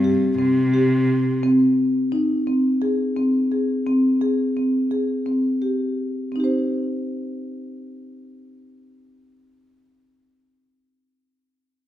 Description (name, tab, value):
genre	contemporary instrumental, contemporary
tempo	172 BPM (eighths)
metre	7/8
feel	straight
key	C minor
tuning	A4 = 439 Hz
part	marimba with soft mallets	arpeggios	0.0-10.3 s	C4 to C5	-19 LUFS	equal	none
part	dark cello	bass	0.0-1.4 s	G2 to C3	-23 LUFS	equal	none
room	moderate recital hall reverb, RT60 1.5 s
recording	minimal, uncompressed stereo recording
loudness	-18 LUFS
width	side -12 dB against mid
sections	0.0-6.3 A section; 6.3-8.8 B section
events	none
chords	0.0 C5; 1.4 Ab; 6.3 Cm